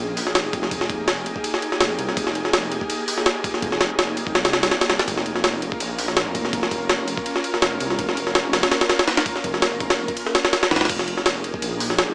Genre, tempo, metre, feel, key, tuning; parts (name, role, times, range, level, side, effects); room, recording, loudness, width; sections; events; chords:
drum and bass, jungle; 165 BPM; 4/4; swing 54% on 16ths; F minor; A4 = 444 Hz
ethereal airy pad; sustained chords; 0.0-12.1 s; Bb3 to Bb4; -26 LUFS; equal; ensemble chorus, built-in reverb
detuned saw bass; bass; 0.0-12.1 s; F1 to C2; -30 LUFS; equal
jungle sampler-style drum kit; drums; 0.2-12.1 s; crash cymbal, hi-hat, kick drum, ride cymbal, snare drum; -20 LUFS; equal
light reverb, digital ambience; small speaker sound; -19 LUFS; side -29 dB against mid
0.0-10.9 A section; 10.9-12.1 A section
drop 0.0-10.9, 10.9-12.1
0.0 Fm11; 5.1 Bbm/F; 10.9 Fm11